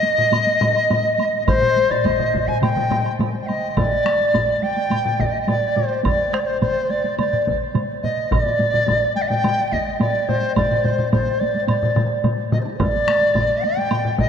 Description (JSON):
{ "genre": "japanese traditional, taiko drum ensemble", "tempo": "106 BPM", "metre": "4/4", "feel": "straight", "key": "unclear", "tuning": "A4 = 441 Hz", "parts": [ { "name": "large dizi", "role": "melody", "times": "0.0-14.3 s", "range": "D4 to Ab5", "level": "-19 LUFS", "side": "equal", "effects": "none" }, { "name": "taiko ensemble", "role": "percussion", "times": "0.0-14.3 s", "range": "none", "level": "-27 LUFS", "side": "right 1 dB", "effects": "none" }, { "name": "solo taiko drums", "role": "percussion", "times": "0.2-14.3 s", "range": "none", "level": "-25 LUFS", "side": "left 2 dB", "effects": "none" }, { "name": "woodblock", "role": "percussion", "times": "0.3-14.0 s", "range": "none", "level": "-34 LUFS", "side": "right 5 dB", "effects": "none" }, { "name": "taiko ensemble", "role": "percussion", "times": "1.5-12.7 s", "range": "none", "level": "-28 LUFS", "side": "right 2 dB", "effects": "none" }, { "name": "taiko ensemble", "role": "percussion", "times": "1.5-14.3 s", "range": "none", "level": "-28 LUFS", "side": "equal", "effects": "none" } ], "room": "wet cathedral reverb, RT60 5.9 s", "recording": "in a vast, echoing space", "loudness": "-17 LUFS", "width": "side -7 dB against mid", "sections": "0.0-3.8 A section; 3.8-14.3 B section", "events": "speeding up 0.0-14.3", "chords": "none" }